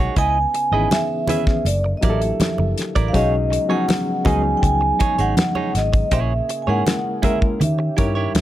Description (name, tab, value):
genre	lush 1970s-style soul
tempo	81 BPM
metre	4/4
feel	straight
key	unclear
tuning	A4 = 441 Hz
part	vibraphone with soft mallets	melody	0.0-8.4 s	D5 to G#5	-22 LUFS	right 2 dB	slapback echo
part	barky reed electric piano	accompaniment	0.0-8.4 s	D#3 to A#4	-24 LUFS	left 3 dB	overdrive, fast tremolo
part	mellow tonewheel organ	sustained chords	0.0-8.4 s	C#3 to G#4	-32 LUFS	equal	overdrive, chorus vibrato, slow rotary speaker
part	direct-recorded clean electric guitar	riff	0.0-8.4 s	D#4 to E5	-26 LUFS	right 7 dB	none
part	vintage muted fingered electric bass	bass	0.0-8.4 s	F#1 to D#3	-21 LUFS	equal	none
part	damped 70s drum kit	drums	0.2-8.4 s	hi-hat, kick drum, snare drum	-20 LUFS	equal	none
part	congas	percussion	0.9-8.4 s	none	-26 LUFS	right 3 dB	none
room	light reverb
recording	none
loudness	-17 LUFS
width	side -13 dB against mid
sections	0.0-8.4 A section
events	none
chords	0.2 C#m9; 1.7 F#7alt; 3.1 B69; 6.1 A#m7b5; 7.6 D#7b9